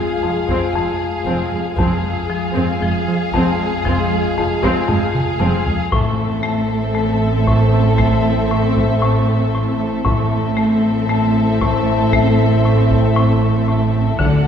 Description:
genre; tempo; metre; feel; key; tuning
cinematic, suspense film score; 58 BPM; 4/4; straight; unclear; A4 = 440 Hz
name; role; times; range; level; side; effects
muted studio violin section; melody; 0.0-14.5 s; E5 to F#5; -26 LUFS; left 3 dB; none
muted studio violin section; second line; 0.0-14.5 s; Ab4 to A4; -24 LUFS; left 3 dB; none
muted studio viola section; accompaniment; 0.0-14.5 s; F3 to D4; -25 LUFS; equal; none
dark French horn section; sustained chords; 0.0-14.5 s; Ab3 to F#4; -24 LUFS; left 3 dB; none
buzzing marimba with hard mallets; riff; 0.0-14.5 s; F2 to A3; -20 LUFS; left 2 dB; none
muted studio cello section; bass; 0.0-14.5 s; F2 to D3; -21 LUFS; right 3 dB; none
muted studio double bass section; bass; 0.2-14.5 s; F1 to D2; -23 LUFS; right 2 dB; none
solo taiko drums; drums; 0.5-14.5 s; none; -24 LUFS; equal; none
room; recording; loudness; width
wet scoring stage reverb, RT60 1.9 s; heard from further back in the room; -14 LUFS; side -8 dB against mid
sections
0.0-14.5 A section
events
drum fill 4.9-5.9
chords
0.0 Fm; 5.9 Am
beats
0.75 | 1.79 2.82 3.85 4.89 | 5.92 6.96 7.99 9.03 | 10.06 11.10 12.13 13.17 | 14.20

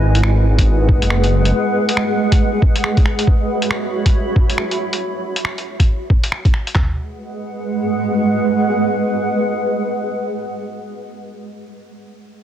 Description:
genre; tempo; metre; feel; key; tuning
future garage; 138 BPM; 4/4; swing 61% on 16ths; G# minor; A4 = 440 Hz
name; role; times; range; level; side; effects
granular cloud pad; sustained chords; 0.0-11.0 s; G#3 to B5; -19 LUFS; right 1 dB; built-in reverb, sidechain pumping
swelling detuned saw bass; bass; 0.0-1.5 s; F#1 to G#1; -14 LUFS; equal; sidechain pumping
lo-fi sampler-style drum kit; drums; 0.1-6.7 s; finger snaps, hi-hat; -22 LUFS; left 1 dB; vintage 12-bit sampler grit, soft clipping on snare
lo-fi sampler-style drum kit; drums; 0.6-6.9 s; handclaps, kick drum, toms; -14 LUFS; equal; vintage 12-bit sampler grit
room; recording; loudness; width
light reverb; dense, heavily limited modern master, cassette tape; -14 LUFS; side -10 dB against mid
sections
0.0-6.8 A section; 6.8-10.2 B section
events
none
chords
0.0 G#m7; 3.3 F#7sus4; 6.8 G#m7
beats
0.23 0.67 1.10 | 1.54 1.97 2.41 2.84 | 3.27 3.71 4.14 4.58 | 5.01 5.45 5.88 6.32 | 6.75 7.19 7.62 8.06 | 8.49 8.93 9.36 9.80

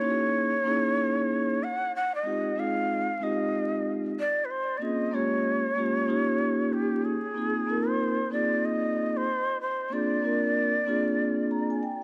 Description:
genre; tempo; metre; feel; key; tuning
hip hop; 94 BPM; 4/4; swing 60% on 16ths; unclear; A4 = 441 Hz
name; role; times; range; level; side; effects
breathy mellow shakuhachi; melody; 0.0-11.8 s; G4 to Gb5; -31 LUFS; equal; analog delay
vibraphone with soft mallets; accompaniment; 0.0-12.0 s; Ab3 to Bb5; -30 LUFS; equal; none
room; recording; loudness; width
light reverb; vinyl crackle; -27 LUFS; mono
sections
0.0-12.0 A section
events
vibraphone fill 11.2-12.0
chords
0.0 Gb13; 2.3 Fm9; 4.8 Bbm7; 6.1 Eb7; 7.4 Ab6; 9.9 Bb7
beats
0.34 0.97 1.61 | 2.25 2.89 3.53 4.17 | 4.80 5.44 6.08 6.72 | 7.36 8.00 8.63 9.27 | 9.91 10.55 11.19 11.83

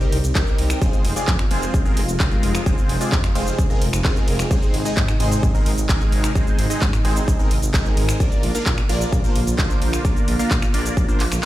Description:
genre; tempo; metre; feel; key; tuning
EDM, festival progressive house; 130 BPM; 4/4; straight; unclear; A4 = 440 Hz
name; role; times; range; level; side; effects
lush unison pad; sustained chords; 0.0-11.5 s; C3 to F4; -29 LUFS; equal; chorus, sidechain pumping
supersaw stab; riff; 0.0-11.5 s; G3 to F5; -25 LUFS; equal; phaser, vintage 12-bit sampler grit, sidechain pumping, ping-pong delay
detuned saw bass; bass; 0.0-11.4 s; F1 to Bb2; -24 LUFS; equal; sidechain pumping
big-room dance drum kit; drums; 0.0-11.5 s; finger snaps, handclaps, hi-hat, ride cymbal, shaker; -27 LUFS; equal; none
electronic kick drum; drums; 0.4-11.1 s; none; -19 LUFS; equal; none
room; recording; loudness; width
little or no reverb; played on a big sound system in a bare room, stone room reverb; -17 LUFS; side -15 dB against mid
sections
0.0-11.5 A section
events
none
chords
0.0 Cm; 0.8 Fm; 4.5 Ab; 8.2 Bb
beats
0.35 | 0.82 1.28 1.74 2.20 | 2.66 3.12 3.59 4.05 | 4.51 4.97 5.43 5.89 | 6.36 6.82 7.28 7.74 | 8.20 8.66 9.12 9.59 | 10.05 10.51 10.97 11.43

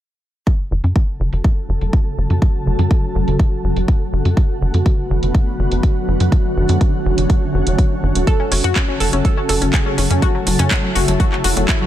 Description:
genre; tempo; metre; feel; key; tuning
progressive house; 123 BPM; 4/4; straight; F# minor; A4 = 440 Hz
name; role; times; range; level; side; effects
shimmering ambient pad; sustained chords; 0.9-11.9 s; C#3 to A4; -21 LUFS; right 1 dB; chorus, built-in reverb, sidechain pumping
electronic kick drum; drums; 0.5-11.8 s; none; -16 LUFS; equal; small room ambience
house drum kit; drums; 0.5-11.8 s; handclaps, hi-hat; -23 LUFS; right 2 dB; sidechain pumping on hats, low-pass filter on hats, small room ambience, low-pass filter on snare
tight sequencer bass; bass; 0.7-11.7 s; E1 to F#2; -17 LUFS; equal; sidechain pumping
analog pluck; arpeggios; 8.3-11.9 s; F#3 to A4; -20 LUFS; left 3 dB; chorus, sidechain pumping, ping-pong delay
room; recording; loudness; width
little or no reverb; none; -14 LUFS; side -12 dB against mid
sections
0.5-11.9 A section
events
filter sweep on ambient pad 0.5-11.9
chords
0.5 F#m; 4.4 Bm7/F#; 8.3 F#m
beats
| 0.47 0.96 1.44 1.93 | 2.42 2.91 3.40 3.88 | 4.37 4.86 5.35 5.83 | 6.32 6.81 7.30 7.79 | 8.27 8.76 9.25 9.74 | 10.22 10.71 11.20 11.69

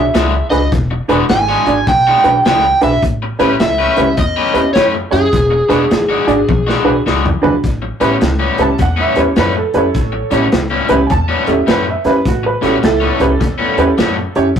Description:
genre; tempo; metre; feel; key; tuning
electric blues shuffle; 104 BPM; 4/4; swing 64% on 8ths; unclear; A4 = 439 Hz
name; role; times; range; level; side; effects
overdriven slide guitar; melody; 0.0-7.0 s; G#4 to G#5; -14 LUFS; right 1 dB; none
clear upright piano; accompaniment; 0.0-14.5 s; C#4 to A5; -15 LUFS; right 2 dB; none
upright bass; bass; 0.0-14.6 s; E1 to F#2; -20 LUFS; left 1 dB; none
overdriven semi-hollow guitar; riff; 0.1-14.2 s; A2 to B4; -18 LUFS; left 4 dB; spring reverb
crunchy breakbeat drum kit; drums; 0.1-14.6 s; hi-hat, kick drum, snare drum, toms; -17 LUFS; equal; none
room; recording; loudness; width
moderate small room ambience, RT60 0.5 s; rough rehearsal-room recording, tube saturation; -11 LUFS; side -8 dB against mid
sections
0.0-7.6 A section; 7.6-14.6 B section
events
drum fill 6.5-7.6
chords
0.0 E9; 3.0 A9; 5.3 E9; 7.6 A9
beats
0.15 | 0.72 1.30 1.88 2.45 | 3.03 3.60 4.18 4.76 | 5.34 5.91 6.49 7.07 | 7.64 8.22 8.80 9.38 | 9.95 10.53 11.11 11.69 | 12.26 12.84 13.41 13.99 | 14.57

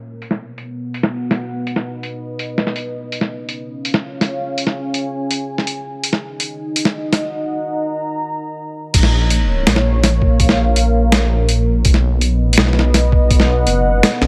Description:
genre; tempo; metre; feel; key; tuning
half-time drum and bass; 165 BPM; 4/4; half-time; Bb phrygian; A4 = 437 Hz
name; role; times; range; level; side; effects
dark analog pad; sustained chords; 0.0-14.3 s; Bb3 to Bb5; -24 LUFS; equal; chorus, sidechain pumping
boom bap sampler-style drum kit; drums; 0.2-14.3 s; crash cymbal, hi-hat, snare drum; -19 LUFS; equal; none
dark detuned saw bass; bass; 8.9-14.3 s; F#1 to B1; -18 LUFS; equal; none
electronic kick drum; drums; 8.9-13.4 s; none; -17 LUFS; equal; none
room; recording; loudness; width
light reverb; low-pass filter; -17 LUFS; mono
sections
0.0-8.9 A section; 8.9-14.3 B section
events
filter sweep 0.0-8.9; break 7.5-8.9; drop 8.9-14.3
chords
0.2 B; 3.1 Db; 6.0 Ebm; 8.9 Bbm; 11.9 B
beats
| 0.22 0.58 0.94 1.31 | 1.67 2.03 2.40 2.76 | 3.12 3.49 3.85 4.22 | 4.58 4.94 5.31 5.67 | 6.03 6.40 6.76 7.12 | 7.49 7.85 8.22 8.58 | 8.94 9.31 9.67 10.03 | 10.40 10.76 11.12 11.49 | 11.85 12.22 12.58 12.94 | 13.31 13.67 14.03

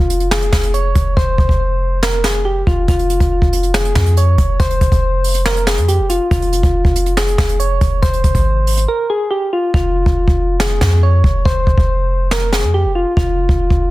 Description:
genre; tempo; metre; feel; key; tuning
hip hop, trap; 140 BPM; 4/4; half-time; F minor; A4 = 440 Hz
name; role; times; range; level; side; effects
soft electric-piano-like synth keys; melody; 0.0-13.9 s; F4 to Db5; -18 LUFS; left 1 dB; chorus, low-pass filter
warm 808-style bass; bass; 0.0-13.9 s; F1 to F2; -16 LUFS; equal; none
jazz brush drum kit; drums; 0.1-13.8 s; hi-hat, kick drum, snare drum; -16 LUFS; equal; none
room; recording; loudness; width
small room ambience; dense, heavily limited modern master; -12 LUFS; side -18 dB against mid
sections
0.0-13.9 A section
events
hi-hats muted 1.2-2.9, 9.7-13.9; break 8.9-9.7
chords
0.0 Fm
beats
0.31 0.74 | 1.17 1.60 2.03 2.46 | 2.88 3.31 3.74 4.17 | 4.60 5.03 5.46 5.88 | 6.31 6.74 7.17 7.60 | 8.03 8.46 8.88 9.31 | 9.74 10.17 10.60 11.03 | 11.46 11.88 12.31 12.74 | 13.17 13.60

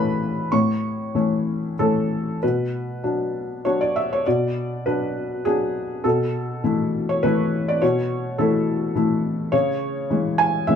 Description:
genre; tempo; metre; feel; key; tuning
neoclassical minimalist piano; 93-106 BPM; 3/4; rubato; B dorian; A4 = 439 Hz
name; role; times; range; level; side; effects
felt-muted upright piano; solo; 0.0-10.8 s; A2 to C#6; -20 LUFS; left 1 dB; none
room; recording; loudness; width
moderate studio reverb, RT60 0.5 s; band playing live in one room, faint mains hum; -20 LUFS; side -7 dB against mid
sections
0.0-2.4 A section; 2.4-10.8 B section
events
none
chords
0.0 A; 2.4 Bm; 6.0 Esus4/B; 9.5 C#m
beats
| 0.51 1.14 1.78 | 2.42 3.03 3.64 | 4.25 4.85 5.45 | 6.04 6.63 7.23 | 7.81 8.38 8.95 | 9.52 10.09 10.67

